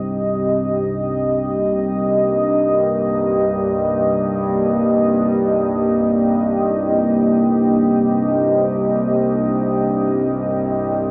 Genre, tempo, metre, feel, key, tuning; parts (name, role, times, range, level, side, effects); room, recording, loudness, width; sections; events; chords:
dark ambient drone; free time; C minor; A4 = 440 Hz
deep dark ambient pad; sustained chords; 0.0-11.1 s; Bb3 to Eb5; -16 LUFS; equal; chorus, built-in reverb
analog drone; drone; 0.0-11.1 s; C2 to G2; -21 LUFS; equal; chorus, phaser
bronze singing bowl; texture; 0.0-11.1 s; barely audible
wet cathedral reverb, RT60 5.7 s; small speaker sound; -15 LUFS; side -32 dB against mid
0.0-11.1 A section
0.0 Cm